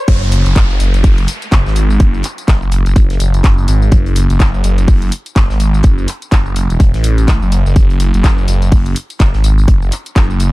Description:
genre	bass house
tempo	125 BPM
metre	4/4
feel	swing 59% on 16ths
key	F# minor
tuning	A4 = 440 Hz
part	riser and downlifter	sound effects	0.0-3.9 s	none	-25 LUFS	equal	none
part	phased detuned saw bass	bass	0.1-10.5 s	E1 to A1	-12 LUFS	equal	phaser, overdrive, sidechain pumping
part	damped 70s drum kit	drums	0.1-10.5 s	hi-hat, snare drum	-34 LUFS	left 3 dB	none
part	electronic kick drum	drums	0.1-10.3 s	none	-10 LUFS	equal	none
part	garage drum kit	drums	0.1-10.5 s	crash cymbal, handclaps, hi-hat, tambourine	-23 LUFS	left 1 dB	none
room	little or no reverb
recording	dark, warm production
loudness	-10 LUFS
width	side -20 dB against mid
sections	0.1-10.5 A section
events	drop 0.1-10.5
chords	none

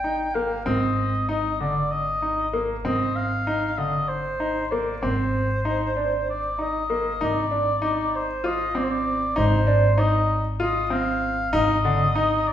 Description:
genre	contemporary instrumental, chamber music in an uneven meter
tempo	193 BPM (eighths)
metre	7/8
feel	straight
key	Ab lydian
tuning	A4 = 440 Hz
part	warm oboe	melody	0.0-12.5 s	C5 to G5	-25 LUFS	left 1 dB	none
part	bright grand piano	arpeggios	0.0-12.5 s	D3 to F4	-25 LUFS	equal	none
part	upright bass	bass	0.0-12.5 s	Ab1	-27 LUFS	equal	none
room	wet recital hall reverb, RT60 1.3 s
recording	heard from further back in the room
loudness	-21 LUFS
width	side -10 dB against mid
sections	0.0-7.2 A section; 7.2-12.5 B section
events	none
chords	0.0 Ab; 11.5 Cmadd9/Ab (rootless)

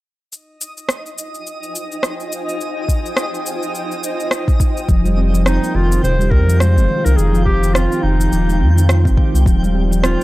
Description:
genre	organic downtempo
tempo	105 BPM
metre	4/4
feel	swing 57% on 16ths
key	F minor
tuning	A4 = 440 Hz
part	granular cloud pad	sustained chords	1.7-10.2 s	Eb4 to Ab5	-28 LUFS	right 1 dB	built-in reverb, sidechain pumping
part	electronic cabasa and rim click	drums	0.3-10.2 s	none	-22 LUFS	equal	overdrive
part	twinkling granular texture	texture	0.7-10.2 s	Eb4 to G5	-28 LUFS	right 1 dB	built-in reverb
part	electronic kick drum	drums	2.9-9.6 s	none	-15 LUFS	equal	overdrive
part	handpan	arpeggios	4.9-10.2 s	C3 to F4	-19 LUFS	equal	tape echo
part	warm sub bass	bass	4.9-10.2 s	Eb1 to F2	-14 LUFS	equal	tube saturation, sidechain pumping
part	warm clarinet	melody	5.5-10.2 s	Eb4 to C5	-22 LUFS	equal	tape echo
room	little or no reverb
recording	dry, gritty hardware recording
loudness	-14 LUFS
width	side -18 dB against mid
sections	0.3-4.9 A section; 4.9-10.2 B section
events	none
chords	0.3 Fm7; 4.9 F7(no3); 9.5 Eb

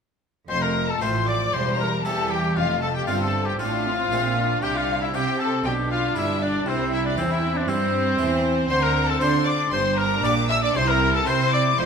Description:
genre	classical, baroque-style concerto movement with solo episodes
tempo	117 BPM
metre	4/4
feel	straight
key	F major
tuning	A4 = 441 Hz
part	clear oboe	melody	0.5-11.9 s	C4 to E5	-26 LUFS	left 2 dB	none
part	rich chamber violin section	melody	0.5-11.9 s	C5 to E6	-28 LUFS	left 6 dB	none
part	rich chamber violin section	second line	0.5-11.9 s	C4 to E5	-27 LUFS	left 1 dB	none
part	harpsichord	accompaniment	0.5-11.9 s	E2 to A4	-33 LUFS	left 1 dB	none
part	warm chamber viola section	accompaniment	0.5-11.9 s	F3 to F4	-29 LUFS	right 3 dB	none
part	clear chamber double bass section	bass	0.5-11.9 s	E1 to D3	-28 LUFS	right 3 dB	none
part	clear studio cello section	bass	0.5-11.9 s	E2 to D4	-29 LUFS	right 3 dB	none
room	wet recital hall reverb, RT60 1.4 s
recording	minimal, uncompressed stereo recording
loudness	-20 LUFS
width	side -6 dB against mid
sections	0.5-11.9 A section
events	none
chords	0.5 F; 1.5 C7/E; 2.6 F; 4.6 C; 5.6 G7/B; 6.7 C; 8.7 Dm7; 9.7 Gm; 10.8 C

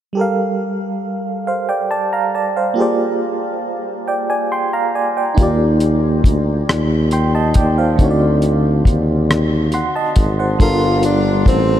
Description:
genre	slow six-eight R&B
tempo	46 BPM (dotted quarters)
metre	6/8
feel	straight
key	G minor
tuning	A4 = 440 Hz
part	FM electric piano with tremolo	accompaniment	0.1-11.8 s	D3 to C6	-18 LUFS	right 1 dB	none
part	breathy tuba	bass	5.4-11.8 s	G1 to Eb2	-16 LUFS	equal	none
part	cloth-damped thuddy drum kit	drums	5.4-11.7 s	hi-hat, kick drum, rim click	-16 LUFS	left 1 dB	none
part	breathy tenor saxophone	melody	10.6-11.8 s	C4 to F4	-18 LUFS	equal	diffuse ambient delay
room	moderate huge ambient reverb, RT60 8.6 s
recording	dreamy mix soaked in reverb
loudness	-14 LUFS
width	side -11 dB against mid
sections	0.2-10.6 A section; 10.6-11.8 B section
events	none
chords	0.2 Gm9; 2.8 Bb13; 5.4 Ebmaj9; 8.0 D7b9; 10.6 Gm9

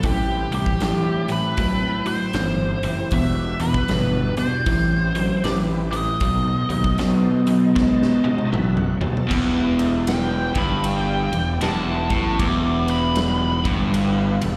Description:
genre	blues rock power trio and southern rock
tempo	78 BPM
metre	4/4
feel	swing 63% on 8ths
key	E minor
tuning	A4 = 443 Hz
part	biting lead guitar	melody	0.0-13.7 s	G4 to D6	-29 LUFS	equal	wah, overdrive, slapback echo, tape echo
part	overdriven tonewheel organ	sustained chords	0.0-14.6 s	B3 to A5	-34 LUFS	equal	slow rotary speaker, chorus vibrato
part	overdriven electric guitar	riff	0.0-14.6 s	E2 to G#3	-25 LUFS	equal	slapback echo
part	fuzz fingered electric bass	bass	0.0-14.6 s	E1 to B2	-26 LUFS	equal	overdrive
part	big rock drum kit	drums	0.0-14.5 s	crash cymbal, hi-hat, kick drum, ride cymbal, snare drum, toms	-29 LUFS	equal	none
room	little or no reverb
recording	live gig heard through the venue's PA, recital hall reverb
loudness	-21 LUFS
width	mono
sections	0.0-9.3 A section; 9.3-14.6 B section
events	drum fill 7.8-9.3; tonewheel organ fill 7.8-9.3; lead electric guitar solo 9.3-14.6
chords	0.0 Am9; 3.1 Em9; 4.7 Am9; 6.2 B7b9; 9.3 Em

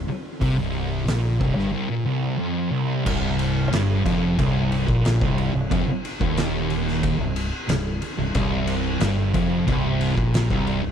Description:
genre	stoner and doom metal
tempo	91 BPM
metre	4/4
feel	straight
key	C minor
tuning	A4 = 440 Hz
part	thick fuzz guitar	riff	0.0-10.9 s	C2 to C3	-25 LUFS	left 7 dB	distortion
part	growling fingered electric bass	bass	0.0-10.9 s	C1 to C2	-28 LUFS	equal	overdrive
part	thick fuzz guitar	riff	0.1-10.9 s	C2 to C3	-25 LUFS	right 8 dB	distortion
part	oversized low-tuned drum kit	drums	0.4-10.8 s	crash cymbal, hi-hat, kick drum, ride cymbal, snare drum	-26 LUFS	equal	none
room	little or no reverb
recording	none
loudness	-20 LUFS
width	side -8 dB against mid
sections	0.0-3.1 A section; 3.1-10.9 B section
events	none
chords	0.0 C5; 3.1 Cm

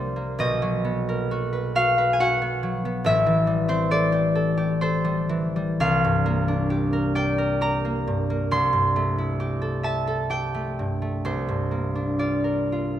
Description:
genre	classical, solo harp piece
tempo	66 BPM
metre	3/4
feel	uneven beats, rubato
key	unclear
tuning	A4 = 437 Hz
part	concert harp	solo	0.0-13.0 s	A1 to C6	-21 LUFS	equal	none
room	moderate concert hall reverb, RT60 2.1 s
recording	none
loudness	-21 LUFS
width	side -11 dB against mid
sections	0.0-13.0 A section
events	none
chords	0.4 Bmaj7; 3.1 Am7; 5.8 C11; 8.5 Am7/C; 11.2 C11

